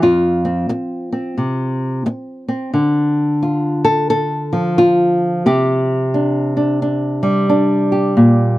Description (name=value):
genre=folk, solo fingerstyle acoustic guitar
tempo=88 BPM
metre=4/4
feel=swing 62% on 8ths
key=unclear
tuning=A4 = 440 Hz
part: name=nylon-string guitar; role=solo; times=0.0-8.6 s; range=F2 to A4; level=-14 LUFS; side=equal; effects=none
room=light reverb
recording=dry, close 1970s-style studio recording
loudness=-14 LUFS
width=side -17 dB against mid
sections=0.0-2.7 A section; 2.7-8.6 B section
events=none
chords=0.0 F5; 2.7 Dm; 5.5 Csus2